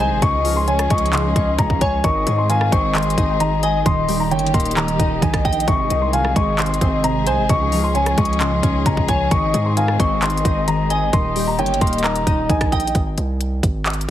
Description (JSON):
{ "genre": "hip hop, trap", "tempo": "132 BPM", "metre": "4/4", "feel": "half-time", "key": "Ab major", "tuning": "A4 = 440 Hz", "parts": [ { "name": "dark baby grand piano", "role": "melody", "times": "0.0-12.9 s", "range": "G5 to Db6", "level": "-22 LUFS", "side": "left 1 dB", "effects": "low-pass filter, ping-pong delay" }, { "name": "soft octave-layered synth lead", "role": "second line", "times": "0.0-12.9 s", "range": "Db5 to F5", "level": "-25 LUFS", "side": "left 4 dB", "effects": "chorus, ping-pong delay" }, { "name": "glassy digital keys", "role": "accompaniment", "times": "0.0-13.0 s", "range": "C3 to Eb5", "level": "-23 LUFS", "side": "right 1 dB", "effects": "chorus, phaser, low-pass filter" }, { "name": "warm symphonic string section", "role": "sustained chords", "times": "0.0-12.9 s", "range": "Eb3 to Ab4", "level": "-27 LUFS", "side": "equal", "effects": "none" }, { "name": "distorted 808-style bass", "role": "bass", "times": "0.0-14.1 s", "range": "Eb1 to Ab2", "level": "-22 LUFS", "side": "right 1 dB", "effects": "distortion" }, { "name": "trap drum kit", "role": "drums", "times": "0.2-14.1 s", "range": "handclaps, hi-hat, kick drum, rim click", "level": "-21 LUFS", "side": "equal", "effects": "none" } ], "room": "little or no reverb", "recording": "heavily compressed radio sound", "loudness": "-16 LUFS", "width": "side -12 dB against mid", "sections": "0.0-12.9 A section; 12.9-14.1 B section", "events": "break 12.9-14.1", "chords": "0.2 Db; 2.0 Ab; 3.9 Eb; 5.7 Ab; 7.5 Db; 9.3 Ab; 11.1 Eb; 12.9 Ab", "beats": "| 0.22 0.68 1.13 1.59 | 2.04 2.50 2.95 3.40 | 3.86 4.31 4.77 5.22 | 5.68 6.13 6.59 7.04 | 7.50 7.95 8.40 8.86 | 9.31 9.77 10.22 10.68 | 11.13 11.59 12.04 12.49 | 12.95 13.40 13.86" }